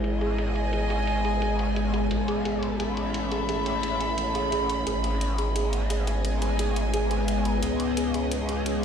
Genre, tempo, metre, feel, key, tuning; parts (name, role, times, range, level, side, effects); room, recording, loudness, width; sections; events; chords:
dark technical drum and bass; 174 BPM; 4/4; straight; G# phrygian; A4 = 440 Hz
deep dark ambient pad; sustained chords; 0.0-8.8 s; G#3 to C#5; -30 LUFS; left 2 dB; chorus, built-in reverb
growl bass; bass; 0.0-8.8 s; G#1 to C#2; -28 LUFS; equal; chorus, overdrive
electronic hi-hat; drums; 0.0-8.7 s; -37 LUFS; left 2 dB; overdrive, low-pass filter on hats, studio reverb, low-pass filter on cymbals, low-pass filter on snare
dark studio string section; texture; 0.0-8.8 s; C#4 to B5; -31 LUFS; left 1 dB
soft round pluck; arpeggios; 0.2-8.8 s; G#4; -33 LUFS; right 4 dB; analog chorus, dub echo
moderate plate reverb, RT60 1.6 s, digital ambience; played on a big sound system in a bare room, stone room reverb; -24 LUFS; side -7 dB against mid
0.0-8.8 A section
0.0 G#m; 2.1 A; 4.9 G#m; 7.6 C#m